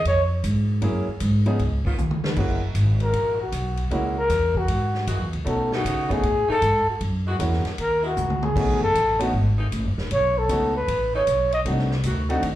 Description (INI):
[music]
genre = jazz, big band swing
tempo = 155 BPM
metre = 4/4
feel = swing 66% on 8ths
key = unclear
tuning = A4 = 442 Hz
[part]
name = breathy trumpet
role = melody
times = 0.0-0.2, 3.0-11.6 s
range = F#4 to D#5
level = -22 LUFS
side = equal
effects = slapback echo
[part]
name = upright bass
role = bass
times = 0.0-12.6 s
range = D#1 to C#3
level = -24 LUFS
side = equal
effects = none
[part]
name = swinging big-band drum kit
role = drums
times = 0.1-12.5 s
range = crash cymbal, hi-hat, kick drum, ride cymbal, snare drum, toms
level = -31 LUFS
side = equal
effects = none
[part]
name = clear grand piano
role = accompaniment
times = 0.8-12.4 s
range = E#3 to G#4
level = -27 LUFS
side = right 1 dB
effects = slapback echo
[part]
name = bright saxophone section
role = sustained chords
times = 1.9-12.2 s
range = C#3 to F#4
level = -34 LUFS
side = equal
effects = none
[sound]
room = light reverb, small room ambience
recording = live gig heard through the venue's PA, club reverb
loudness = -20 LUFS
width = side -14 dB against mid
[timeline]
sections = 0.0-2.4 A section; 2.4-12.6 A section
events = trumpet solo 0.0-2.4, 2.4-12.6; drum fill 2.0-2.4, 8.2-8.6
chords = 0.0 C# (rootless); 0.8 F#9; 1.6 C#sus2; 2.4 F#9; 5.5 B9; 7.0 F#9; 8.6 B9; 11.7 Cdim7